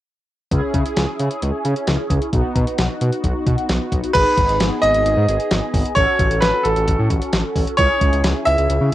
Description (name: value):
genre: synth-pop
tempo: 132 BPM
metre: 4/4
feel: straight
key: C# minor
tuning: A4 = 440 Hz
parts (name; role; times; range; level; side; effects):
- mellow synth brass; accompaniment; 0.5-8.9 s; B3 to A4; -24 LUFS; equal; chorus, phaser
- smooth synth bass; bass; 0.5-8.9 s; G#1 to C#3; -20 LUFS; equal; none
- clean 12-bit digital drum machine; drums; 0.5-8.9 s; crash cymbal, hi-hat, kick drum, snare drum; -21 LUFS; equal; cassette tape
- clear concert grand piano; melody; 4.1-8.9 s; A4 to E5; -17 LUFS; right 1 dB; cassette tape, analog delay
room: moderate studio reverb, RT60 0.7 s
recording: home recording on cassette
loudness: -16 LUFS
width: side -14 dB against mid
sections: 0.5-4.1 A section; 4.1-8.9 B section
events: none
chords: 0.5 C#m; 2.3 B; 4.1 G#m; 6.0 F#m/A; 7.8 C#m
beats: | 0.51 0.97 1.42 1.88 | 2.33 2.79 3.24 3.69 | 4.15 4.60 5.06 5.51 | 5.97 6.42 6.88 7.33 | 7.79 8.24 8.69